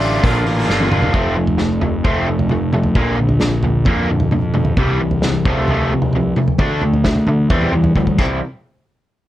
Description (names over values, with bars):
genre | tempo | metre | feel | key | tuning
indie rock | 132 BPM | 4/4 | straight | unclear | A4 = 440 Hz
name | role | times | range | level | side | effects
crunchy overdriven guitar | riff | 0.0-8.4 s | Bb2 to F4 | -17 LUFS | equal | none
fuzz picked electric bass | bass | 0.0-8.4 s | F1 to F2 | -20 LUFS | equal | overdrive
unplugged drum kit | drums | 0.0-8.3 s | crash cymbal, hi-hat, kick drum, snare drum, toms | -19 LUFS | equal | none
room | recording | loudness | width
light reverb | worn, warbling old tape, cassette tape, warbly pitch drift | -14 LUFS | side -14 dB against mid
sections
0.0-1.1 A section; 1.1-8.4 B section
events
drum fill 0.7-1.1, 8.0-8.4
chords
0.2 Bb; 1.1 F; 3.0 Bb; 4.8 C; 5.5 F/C; 6.6 D5; 7.5 C/E; 8.2 C; 8.4 N.C.